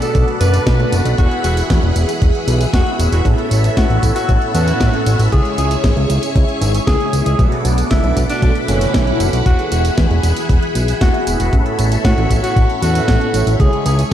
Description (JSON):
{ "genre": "italo disco", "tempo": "116 BPM", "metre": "4/4", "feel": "straight", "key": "A major", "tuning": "A4 = 438 Hz", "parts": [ { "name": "raspy alto saxophone", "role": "melody", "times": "0.0-14.0 s", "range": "C#4 to B4", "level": "-22 LUFS", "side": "left 1 dB", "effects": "tape echo" }, { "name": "phased string machine", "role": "sustained chords", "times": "0.0-14.1 s", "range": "G#4 to D6", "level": "-22 LUFS", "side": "equal", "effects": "ensemble chorus, phaser" }, { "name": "mellow synth brass", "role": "stabs", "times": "0.0-14.1 s", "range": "A2 to A4", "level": "-22 LUFS", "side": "right 1 dB", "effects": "chorus, ping-pong delay" }, { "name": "house drum kit", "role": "drums", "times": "0.0-14.1 s", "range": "hi-hat, snare drum, tambourine", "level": "-24 LUFS", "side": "equal", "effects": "none" }, { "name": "fat analog bass", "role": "bass", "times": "0.1-14.0 s", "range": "E1 to A2", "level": "-16 LUFS", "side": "equal", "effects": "none" }, { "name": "electronic kick drum", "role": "drums", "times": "0.1-13.7 s", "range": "none", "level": "-15 LUFS", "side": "equal", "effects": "none" }, { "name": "swell", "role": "sound effects", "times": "8.6-9.5 s", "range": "none", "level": "-26 LUFS", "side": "left 6 dB", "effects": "none" } ], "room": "moderate plate reverb, RT60 2.1 s", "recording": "dreamy mix soaked in reverb", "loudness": "-12 LUFS", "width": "side -11 dB against mid", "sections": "0.0-14.1 A section", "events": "swell 8.6-9.5", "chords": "0.0 Bm7; 1.2 Eadd9; 3.3 Aadd9; 5.3 C#m; 7.4 Bm7; 9.5 Eadd9; 11.5 Aadd9; 13.6 C#m" }